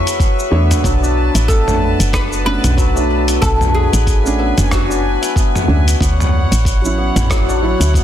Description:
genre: organic downtempo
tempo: 93 BPM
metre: 4/4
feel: swing 57% on 16ths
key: B dorian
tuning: A4 = 440 Hz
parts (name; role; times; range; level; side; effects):
- bright chamber string section; sustained chords; 0.0-8.0 s; B4 to C#6; -25 LUFS; equal; sidechain pumping
- santur; arpeggios; 0.0-8.0 s; F#3 to E4; -21 LUFS; left 5 dB; ping-pong delay
- dusty soul sampler-style drum kit; drums; 0.1-8.0 s; cabasa, hi-hat, rim click, toms; -20 LUFS; equal; soft clipping on snare
- electronic kick drum; drums; 0.2-8.0 s; none; -16 LUFS; equal; none
- felt-muted upright piano; accompaniment; 0.5-8.0 s; F#3 to C#5; -22 LUFS; right 4 dB; sidechain pumping, ping-pong delay
- woody FM bass; bass; 0.5-8.0 s; F#1 to E2; -15 LUFS; equal; none
- oud; melody; 1.5-5.6 s; F#4 to B4; -22 LUFS; left 1 dB; digital delay
room: light reverb, small room ambience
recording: dense, heavily limited modern master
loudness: -12 LUFS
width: side -11 dB against mid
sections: 0.0-8.0 A section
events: none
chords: 0.0 C#m7; 0.8 Bm9; 6.0 Dmaj7

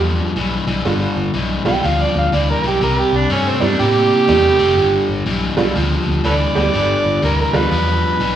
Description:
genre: blues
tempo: 122 BPM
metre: 4/4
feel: swing 64% on 8ths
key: G mixolydian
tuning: A4 = 440 Hz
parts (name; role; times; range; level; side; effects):
- honky-tonk upright piano; accompaniment; 0.0-7.7 s; G3 to Bb4; -22 LUFS; right 5 dB; plate reverb, slapback echo
- crunchy overdriven guitar; riff; 0.0-8.4 s; G2 to Bb3; -19 LUFS; left 4 dB; slapback echo
- vintage muted fingered electric bass; bass; 0.0-8.4 s; F1 to A2; -20 LUFS; equal; none
- overdriven harmonica; melody; 1.7-8.4 s; C4 to G5; -17 LUFS; right 3 dB; plate reverb, slapback echo
room: light reverb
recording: live gig heard through the venue's PA, club reverb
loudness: -14 LUFS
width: side -10 dB against mid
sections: 0.9-8.4 A section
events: harmonica solo 0.9-8.4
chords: 0.0 G9; 2.8 C9; 4.8 G9

